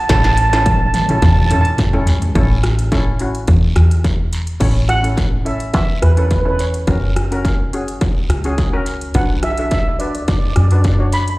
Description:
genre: calypso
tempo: 106 BPM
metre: 4/4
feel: straight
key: A major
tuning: A4 = 440 Hz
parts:
  - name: steel pan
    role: melody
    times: 0.0-11.4 s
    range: B4 to B5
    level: -20 LUFS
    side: right 2 dB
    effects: none
  - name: deep dub fingered electric bass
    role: bass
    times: 0.0-11.4 s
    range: F#1 to F#2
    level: -16 LUFS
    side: equal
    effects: none
  - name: steel pan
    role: accompaniment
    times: 0.1-11.2 s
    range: C#4 to C#5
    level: -24 LUFS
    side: left 1 dB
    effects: slapback echo
  - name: industrial drum kit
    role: drums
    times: 0.1-11.4 s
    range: crash cymbal, hi-hat, kick drum, rim click, snare drum, toms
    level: -18 LUFS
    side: equal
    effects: distortion
  - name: guiro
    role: percussion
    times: 0.1-11.3 s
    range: none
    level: -34 LUFS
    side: right 2 dB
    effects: slapback echo
room: digital ambience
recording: live gig heard through the venue's PA, club reverb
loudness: -13 LUFS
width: side -20 dB against mid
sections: 0.0-2.4 A section; 2.4-4.6 B section; 4.6-11.4 C section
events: drum fill 0.1-2.4; break 4.3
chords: 0.1 A; 2.4 A6; 4.6 A; 6.9 F#; 9.1 Bm

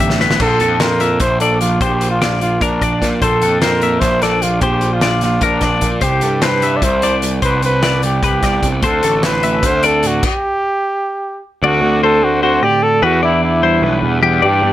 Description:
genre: math rock and midwest emo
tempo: 300 BPM (eighths)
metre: 7/8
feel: straight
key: unclear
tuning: A4 = 442 Hz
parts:
  - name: warm trumpet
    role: melody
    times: 0.0-14.7 s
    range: D4 to D5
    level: -16 LUFS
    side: equal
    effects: slapback echo
  - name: clean electric guitar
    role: accompaniment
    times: 0.0-14.7 s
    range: G2 to A4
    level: -21 LUFS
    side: right 5 dB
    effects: none
  - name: twelve-string electric guitar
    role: arpeggios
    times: 0.0-14.7 s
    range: G4 to E5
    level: -18 LUFS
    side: left 6 dB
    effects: slapback echo
  - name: fuzz picked electric bass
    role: bass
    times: 0.0-14.7 s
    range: A1 to Bb2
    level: -18 LUFS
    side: equal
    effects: overdrive
  - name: loose indie drum kit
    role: drums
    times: 0.0-10.3 s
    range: crash cymbal, hi-hat, kick drum, snare drum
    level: -20 LUFS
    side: equal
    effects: none
room: light reverb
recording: none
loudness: -12 LUFS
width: side -13 dB against mid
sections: 0.4-11.6 A section; 11.6-14.7 B section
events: drum fill 0.1-0.4; stop 10.2-11.6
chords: 0.4 Bbmaj9; 6.0 Cmaj7; 8.8 D7; 10.2 N.C.; 11.6 D7; 13.0 Em7

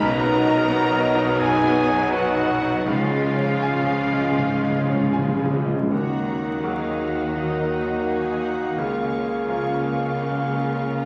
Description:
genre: cinematic, emotional film score for orchestra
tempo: 82 BPM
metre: 4/4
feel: uneven beats, rubato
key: Eb minor from 5.9 s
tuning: A4 = 441 Hz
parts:
  - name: clear symphonic violin section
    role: melody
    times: 0.0-11.1 s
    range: E#5 to Db6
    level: -37 LUFS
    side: equal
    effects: none
  - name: clear oboe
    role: second line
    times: 0.0-11.1 s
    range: E#4 to Gb5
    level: -34 LUFS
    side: equal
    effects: none
  - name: hollow small flute group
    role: second line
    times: 0.0-5.5 s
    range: E#5 to A#5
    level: -30 LUFS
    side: equal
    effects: none
  - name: warm symphonic violin section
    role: second line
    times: 0.0-11.1 s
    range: C#4 to Ab5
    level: -37 LUFS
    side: equal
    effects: none
  - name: bright grand piano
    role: accompaniment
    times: 0.0-11.1 s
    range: B1 to G#5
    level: -30 LUFS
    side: equal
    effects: none
  - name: clear symphonic viola section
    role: accompaniment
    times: 0.0-11.1 s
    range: E#3 to Ab4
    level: -33 LUFS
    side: equal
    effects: none
  - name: mellow French horn section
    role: sustained chords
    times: 0.0-11.1 s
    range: Db3 to D#4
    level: -30 LUFS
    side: equal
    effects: none
  - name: concert harp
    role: arpeggios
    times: 0.0-11.1 s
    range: B2 to D#5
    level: -35 LUFS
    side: equal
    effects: none
  - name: clear symphonic double bass section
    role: bass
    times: 0.0-11.1 s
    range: B1 to Eb2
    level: -36 LUFS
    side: equal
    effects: none
  - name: rich symphonic cello section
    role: bass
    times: 0.0-11.1 s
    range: B2 to Eb3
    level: -31 LUFS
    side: equal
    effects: none
  - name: timpani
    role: percussion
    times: 2.9-5.9 s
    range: C#3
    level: -28 LUFS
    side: equal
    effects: none
  - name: clear French horn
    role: melody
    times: 5.5-11.1 s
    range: Eb4 to Bb4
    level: -31 LUFS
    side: equal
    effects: none
  - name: warm clarinet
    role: second line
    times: 5.9-11.1 s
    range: Bb3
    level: -33 LUFS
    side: equal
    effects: none
room: wet scoring stage reverb, RT60 1.8 s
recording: vinyl crackle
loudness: -22 LUFS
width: mono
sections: 0.0-5.9 A section; 5.9-11.1 B section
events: timpani fill 2.9-5.9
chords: 0.0 Bmaj7; 2.9 C#; 5.9 Ebmadd9; 8.8 Bbm/Db

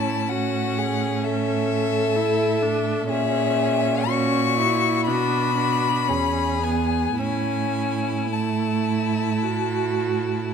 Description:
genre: classical, slow romantic movement for string quartet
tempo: 52-66 BPM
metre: 4/4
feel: rubato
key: A major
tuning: A4 = 440 Hz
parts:
  - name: clear violin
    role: melody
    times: 0.0-10.5 s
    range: E5 to C#6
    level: -25 LUFS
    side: left 10 dB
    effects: none
  - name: rich violin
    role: second line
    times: 0.0-10.5 s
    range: E4 to A4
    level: -27 LUFS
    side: left 2 dB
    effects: none
  - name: rich viola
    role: accompaniment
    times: 0.0-10.5 s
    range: A3 to F#4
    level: -26 LUFS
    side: right 3 dB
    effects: none
  - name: clear cello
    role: bass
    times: 0.0-10.5 s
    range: E2 to B2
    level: -26 LUFS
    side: right 6 dB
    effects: none
room: moderate recital hall reverb, RT60 1.4 s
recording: none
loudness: -20 LUFS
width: side -7 dB against mid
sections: 0.0-10.5 A section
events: none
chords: 0.0 A; 3.1 F#7/A#; 5.1 Bm; 6.1 E; 7.2 A

